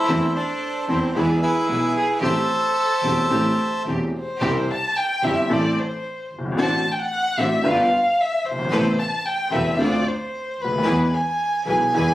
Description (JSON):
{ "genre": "tango", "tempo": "112 BPM", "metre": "4/4", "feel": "rubato", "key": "A minor", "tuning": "A4 = 440 Hz", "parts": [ { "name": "bandoneon", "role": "melody", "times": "0.0-3.8 s", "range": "E4 to A5", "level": "-21 LUFS", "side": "right 1 dB", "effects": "none" }, { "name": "warm violin", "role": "second line", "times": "0.0-12.1 s", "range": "B3 to A5", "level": "-23 LUFS", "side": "equal", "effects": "none" }, { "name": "clear upright piano", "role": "accompaniment", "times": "0.1-12.1 s", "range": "E1 to A4", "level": "-23 LUFS", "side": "equal", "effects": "none" }, { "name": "bright studio string section", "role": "stabs", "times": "0.1-12.1 s", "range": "G#3 to C5", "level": "-29 LUFS", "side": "equal", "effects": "none" }, { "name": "clear double bass", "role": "bass", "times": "0.1-12.1 s", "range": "E1 to E2", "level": "-27 LUFS", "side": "right 1 dB", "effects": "none" } ], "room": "moderate club reverb, RT60 0.8 s", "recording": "recorded on a phone in the room, studio ambience", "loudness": "-19 LUFS", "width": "side -15 dB against mid", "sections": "0.0-4.4 A section; 4.4-12.1 B section", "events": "violin solo 4.4-12.1", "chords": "0.1 Am/E; 1.2 E; 2.2 Am7; 4.4 C; 5.5 Am; 6.6 D7/A; 7.7 G7; 8.7 Amadd9; 9.8 Dm7; 10.9 E", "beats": "| 0.09 0.62 1.16 1.69 | 2.23 2.76 3.31 3.86 | 4.41 4.96 5.51 6.05 | 6.58 7.12 7.66 8.19 | 8.72 9.25 9.79 10.32 | 10.85 11.39 11.93" }